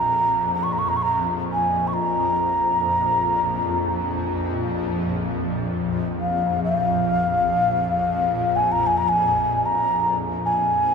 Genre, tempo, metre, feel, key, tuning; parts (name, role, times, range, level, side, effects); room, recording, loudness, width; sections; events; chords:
world meditative, free-time meditation music; free time; A4 = 440 Hz
breathy mellow xiao; melody; 0.0-10.9 s; F5 to Db6; -20 LUFS; equal; ping-pong delay
shimmering ambient pad; drone; 0.0-10.9 s; Bb1 to F2; -25 LUFS; left 1 dB; chorus, built-in reverb
wet concert hall reverb, RT60 2.2 s; -19 LUFS; side -5 dB against mid
0.0-10.9 A section